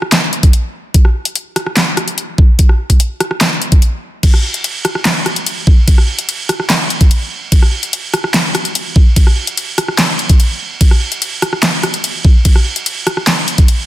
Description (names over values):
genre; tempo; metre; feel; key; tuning
dubstep; 146 BPM; 4/4; half-time; none; none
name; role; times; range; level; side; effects
dubstep drum kit; drums; 0.0-13.8 s; crash cymbal, handclaps, hi-hat, rim click, snare drum; -14 LUFS; equal; overdrive
electronic kick drum; drums; 0.4-13.7 s; none; -8 LUFS; equal; overdrive
room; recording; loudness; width
little or no reverb; dense, heavily limited modern master; -10 LUFS; side -15 dB against mid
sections
0.0-13.9 A section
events
break 3.8-4.2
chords
none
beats
0.12 0.53 | 0.94 1.35 1.77 2.18 | 2.59 3.00 3.41 3.82 | 4.23 4.64 5.05 5.46 | 5.88 6.29 6.70 7.11 | 7.52 7.93 8.34 8.75 | 9.16 9.57 9.99 10.40 | 10.81 11.22 11.63 12.04 | 12.45 12.86 13.27 13.68